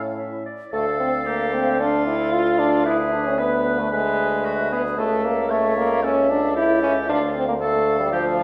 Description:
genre	quick classical-period movement for wind quintet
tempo	113 BPM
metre	4/4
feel	rubato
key	D minor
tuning	A4 = 440 Hz
part	hollow concert flute	melody	0.0-8.4 s	E4 to F5	-32 LUFS	equal	none
part	clear oboe	second line	0.0-8.4 s	F4 to C#5	-31 LUFS	equal	none
part	clear French horn	accompaniment	0.0-8.4 s	F3 to F4	-24 LUFS	equal	none
part	clear clarinet	accompaniment	0.0-8.4 s	A4 to E5	-33 LUFS	equal	none
part	warm bassoon	bass	0.0-8.4 s	C#2 to A2	-28 LUFS	equal	none
room	wet recital hall reverb, RT60 1.4 s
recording	recorded in a church or concert hall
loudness	-21 LUFS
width	mono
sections	0.7-8.4 A section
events	none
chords	0.0 A; 0.7 Dm; 2.8 E7/D; 5.0 A/C#; 7.1 Dm

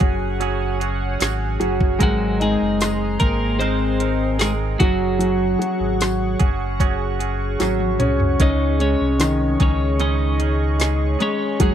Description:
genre	pop ballad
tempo	75 BPM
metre	4/4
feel	straight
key	unclear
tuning	A4 = 441 Hz
part	bright concert grand piano	accompaniment	0.0-11.7 s	Eb3 to Eb4	-24 LUFS	left 1 dB	none
part	chorused pulse-width pad	sustained chords	0.0-11.7 s	Ab4 to Db6	-29 LUFS	equal	none
part	direct-recorded clean electric guitar	arpeggios	0.0-11.7 s	Db3 to Bb4	-27 LUFS	right 16 dB	spring reverb
part	sub bass with octave	bass	0.0-11.7 s	Gb1 to Db2	-23 LUFS	equal	none
part	smooth R&B drum kit	drums	0.0-11.7 s	hi-hat, kick drum, snare drum, toms	-20 LUFS	equal	none
part	downlifter	sound effects	0.0-2.0 s	none	barely audible	none	none
part	tambourine	percussion	1.2-11.0 s	none	-35 LUFS	left 13 dB	none
part	twelve-string electric guitar	melody	2.0-11.7 s	Gb3 to Eb5	-23 LUFS	left 2 dB	spring reverb, slapback echo
room	little or no reverb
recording	dry, close 1970s-style studio recording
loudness	-17 LUFS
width	side -10 dB against mid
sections	0.0-11.7 A section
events	drum fill 7.6-8.4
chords	0.0 Gbsus2; 2.0 Abadd9; 4.8 Gbsus2; 8.4 Dbsus2

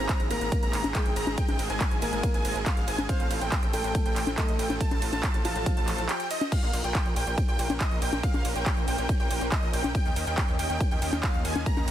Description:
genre	uplifting trance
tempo	140 BPM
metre	4/4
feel	straight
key	Bb dorian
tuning	A4 = 445 Hz
part	dense compressed supersaw	melody	0.0-11.9 s	Eb5 to Bb5	-33 LUFS	right 1 dB	sidechain pumping, dub echo
part	dark grand piano	second line	0.0-6.0 s	F3 to C5	-35 LUFS	equal	dub echo
part	shimmering ambient pad	sustained chords	0.0-11.9 s	Eb3 to Eb5	-37 LUFS	equal	chorus, built-in reverb, sidechain pumping
part	gritty driven synth bass	bass	0.0-11.9 s	Ab1 to Eb2	-32 LUFS	equal	sidechain pumping
part	big-room dance drum kit	drums	0.1-11.9 s	congas, crash cymbal, handclaps, hi-hat, ride cymbal, shaker	-32 LUFS	left 1 dB	sidechain pumping on hats, sidechain pumping on cymbals, sidechain pumping on perc
part	electronic kick drum	drums	0.1-11.7 s	none	-26 LUFS	equal	none
room	light reverb, digital ambience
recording	dense, heavily limited modern master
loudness	-24 LUFS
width	side -11 dB against mid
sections	0.0-6.5 A section; 6.5-11.9 A section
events	drop 0.0-6.5, 6.5-11.9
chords	0.0 Abadd9; 3.1 F/A; 6.5 Bbmadd9; 9.9 Eb7

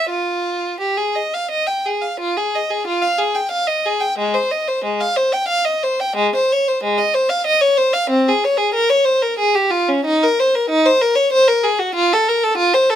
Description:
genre	classical, baroque-style suite movement for unaccompanied violin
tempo	83-96 BPM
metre	3/4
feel	rubato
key	F minor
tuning	A4 = 441 Hz
part	clear violin	solo	0.0-13.0 s	Ab3 to G5	-15 LUFS	equal	none
room	light reverb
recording	minimal, uncompressed stereo recording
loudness	-15 LUFS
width	side -10 dB against mid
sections	0.0-2.2 A section; 2.2-13.0 B section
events	none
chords	none

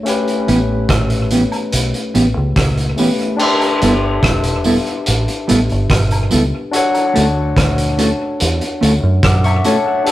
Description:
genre	lovers rock reggae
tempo	72 BPM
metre	4/4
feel	straight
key	D major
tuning	A4 = 440 Hz
part	barky tine electric piano	accompaniment	0.0-10.1 s	A3 to D6	-18 LUFS	left 2 dB	overdrive, dub echo
part	vintage drum kit	drums	0.1-10.1 s	crash cymbal, hi-hat, kick drum, rim click	-18 LUFS	right 1 dB	none
part	mellow electric guitar	stabs	0.5-9.8 s	E3 to A4	-16 LUFS	right 1 dB	none
part	deep dub fingered electric bass	bass	0.5-9.6 s	E1 to F#2	-17 LUFS	equal	none
part	tambourine and woodblock	percussion	0.5-9.8 s	none	-28 LUFS	equal	none
room	moderate stone room reverb, RT60 0.9 s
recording	rough rehearsal-room recording, tube saturation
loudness	-13 LUFS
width	side -14 dB against mid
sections	0.0-3.4 A section; 3.4-10.1 B section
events	none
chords	0.1 A9; 3.4 G69; 6.7 Dmaj7

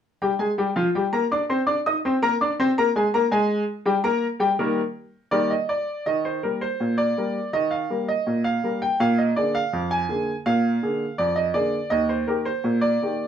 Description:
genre	ragtime piano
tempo	82 BPM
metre	2/4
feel	straight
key	Eb major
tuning	A4 = 442 Hz
part	clear upright piano	solo	0.2-13.3 s	Eb2 to Eb6	-20 LUFS	equal	none
room	wet small room reverb, RT60 0.5 s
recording	band playing live in one room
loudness	-21 LUFS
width	side -8 dB against mid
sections	0.2-6.1 A section; 6.1-13.3 B section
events	none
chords	0.2 Eb; 9.0 Bb7; 11.9 Eb

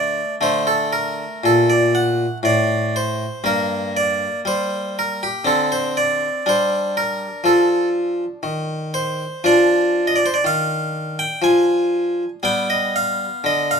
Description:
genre	classical, baroque-style suite movement for harpsichord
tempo	60 BPM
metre	3/4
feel	rubato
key	G minor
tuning	A4 = 439 Hz
part	harpsichord	solo	0.0-13.8 s	G2 to Ab5	-17 LUFS	equal	none
room	light reverb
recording	minimal, uncompressed stereo recording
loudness	-17 LUFS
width	side -6 dB against mid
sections	0.0-13.8 A section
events	none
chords	0.0 D5; 3.4 Gm; 5.5 Amadd11/D; 6.5 G5; 9.4 Ddim; 12.4 G

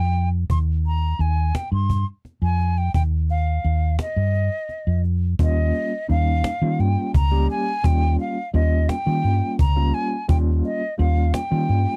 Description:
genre	progressive instrumental, band music in an uneven meter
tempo	172 BPM (eighths)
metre	7/8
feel	straight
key	Eb mixolydian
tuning	A4 = 443 Hz
part	breathy mellow concert flute	melody	0.0-12.0 s	Eb5 to C6	-29 LUFS	equal	none
part	woody fretless electric bass	bass	0.0-11.8 s	Db2 to Eb3	-22 LUFS	equal	none
part	cajon	drums	0.1-11.8 s	none	-27 LUFS	equal	none
part	overdriven tine electric piano	accompaniment	5.4-12.0 s	G3 to G4	-28 LUFS	equal	fast tremolo
room	little or no reverb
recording	dark, warm production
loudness	-21 LUFS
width	mono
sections	0.0-5.4 A section; 5.4-12.0 B section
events	none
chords	0.0 Cm/Eb (rootless); 5.4 Eb7

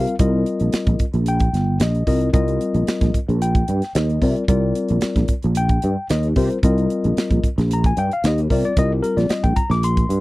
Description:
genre	electric jazz fusion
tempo	112 BPM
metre	4/4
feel	straight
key	C minor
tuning	A4 = 436 Hz
part	tine electric piano	accompaniment	0.0-10.2 s	G3 to D6	-22 LUFS	left 2 dB	none
part	sustaining fretless electric bass	bass	0.0-10.2 s	G1 to C3	-19 LUFS	equal	ensemble chorus
part	tight funk drum kit	drums	0.1-10.2 s	hi-hat, kick drum, snare drum	-21 LUFS	right 1 dB	none
room	little or no reverb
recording	dry, close 1970s-style studio recording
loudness	-16 LUFS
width	side -19 dB against mid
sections	0.0-10.2 A section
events	none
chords	0.0 Cm9

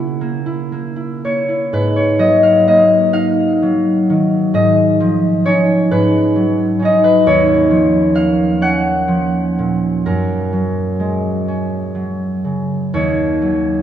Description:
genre	classical, solo harp piece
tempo	43 BPM (dotted quarters)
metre	6/8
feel	uneven beats, rubato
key	G# dorian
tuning	A4 = 445 Hz
part	concert harp	solo	0.0-13.8 s	D#2 to A#5	-13 LUFS	equal	none
room	wet cathedral reverb, RT60 4.3 s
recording	dark, warm production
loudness	-12 LUFS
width	side -10 dB against mid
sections	0.0-1.7 A section; 1.7-13.8 B section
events	none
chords	0.0 C#m6; 1.7 G#m9; 4.5 C#add9/G#; 5.9 B69/G#; 7.3 D#m9; 10.1 F#add9; 13.0 D#m7

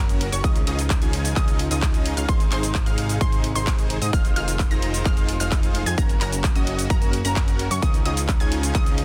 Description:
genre	EDM, festival progressive house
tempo	130 BPM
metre	4/4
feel	straight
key	Db major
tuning	A4 = 444 Hz
part	bright chamber string section	sustained chords	0.0-9.0 s	C3 to Gb4	-35 LUFS	equal	sidechain pumping
part	unison pluck	arpeggios	0.0-9.0 s	Bb5 to Bb6	-34 LUFS	equal	sidechain pumping, dub echo
part	dense compressed supersaw	riff	0.0-9.0 s	Db4 to Bb5	-32 LUFS	equal	sidechain pumping, dub echo
part	fat analog bass	bass	0.0-9.0 s	F1 to Ab2	-29 LUFS	equal	sidechain pumping
part	big-room dance drum kit	drums	0.1-9.0 s	cabasa, handclaps, hi-hat	-32 LUFS	equal	overdrive
part	electronic kick drum	drums	0.4-8.8 s	none	-23 LUFS	equal	overdrive
room	little or no reverb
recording	dense, heavily limited modern master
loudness	-22 LUFS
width	mono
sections	0.0-9.0 A section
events	none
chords	0.4 Dbadd9; 2.3 Ab; 4.1 Fm7; 6.0 Gb; 7.8 Dbadd9

